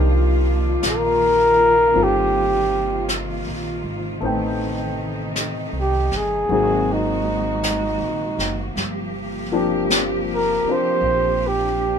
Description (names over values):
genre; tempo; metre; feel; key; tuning
jazz ballad; 53 BPM; 4/4; swing 66% on 8ths; unclear; A4 = 440 Hz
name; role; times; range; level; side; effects
warm grand piano; accompaniment; 0.0-12.0 s; F3 to G5; -25 LUFS; left 5 dB; none
rich studio cello section; sustained chords; 0.0-12.0 s; C3 to G4; -26 LUFS; right 1 dB; none
upright bass; bass; 0.0-12.0 s; Gb1 to C2; -26 LUFS; right 1 dB; none
jazz brush drum kit; drums; 0.8-12.0 s; brushed snare drum, hi-hat, snare drum; -26 LUFS; left 1 dB; none
mellow flugelhorn; melody; 0.9-12.0 s; Eb4 to C5; -18 LUFS; equal; none
room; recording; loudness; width
light reverb; minimal, uncompressed stereo recording; -18 LUFS; side -7 dB against mid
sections
0.0-12.0 A section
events
flugelhorn solo 0.0-12.0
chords
0.0 Cm11; 4.2 Am7b5; 6.5 Ab9; 8.8 Gm7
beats
0.82 1.95 3.08 | 4.21 5.35 6.48 7.62 | 8.76 9.90 11.03